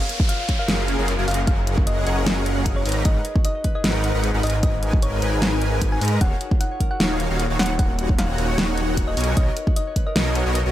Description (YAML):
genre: future bass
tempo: 152 BPM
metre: 4/4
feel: half-time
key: F# major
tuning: A4 = 440 Hz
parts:
  - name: thumb-piano-like synth pluck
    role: melody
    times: 0.0-10.4 s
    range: C#5 to G#5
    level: -30 LUFS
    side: equal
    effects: chorus, sidechain pumping, dub echo
  - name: concert harp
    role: arpeggios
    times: 0.0-10.7 s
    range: D#4 to E#5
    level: -34 LUFS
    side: left 6 dB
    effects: sidechain pumping, dub echo
  - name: supersaw chords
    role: riff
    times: 0.0-10.7 s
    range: D#3 to A#5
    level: -26 LUFS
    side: equal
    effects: ensemble chorus, sidechain pumping
  - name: downlifter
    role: sound effects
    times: 0.0-3.1 s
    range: none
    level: -31 LUFS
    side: equal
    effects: none
  - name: pop drum kit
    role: drums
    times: 0.1-10.6 s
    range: hi-hat, snare drum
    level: -25 LUFS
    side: equal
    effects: none
  - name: electronic kick drum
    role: drums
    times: 0.2-10.0 s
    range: none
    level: -21 LUFS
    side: equal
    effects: none
  - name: wide detuned saw bass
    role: bass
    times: 0.7-10.7 s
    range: D#1 to G#2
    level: -23 LUFS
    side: equal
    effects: chorus, tube saturation, sidechain pumping
room: little or no reverb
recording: none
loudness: -19 LUFS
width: side -13 dB against mid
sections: 0.0-10.7 A section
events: none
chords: 0.0 F#maj7; 2.9 G#m7; 6.2 D#m9; 9.2 Bmaj9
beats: 0.29 0.69 1.08 | 1.47 1.87 2.26 2.66 | 3.05 3.45 3.84 4.24 | 4.63 5.03 5.42 5.82 | 6.21 6.61 7.00 7.39 | 7.79 8.19 8.58 8.97 | 9.37 9.76 10.16 10.55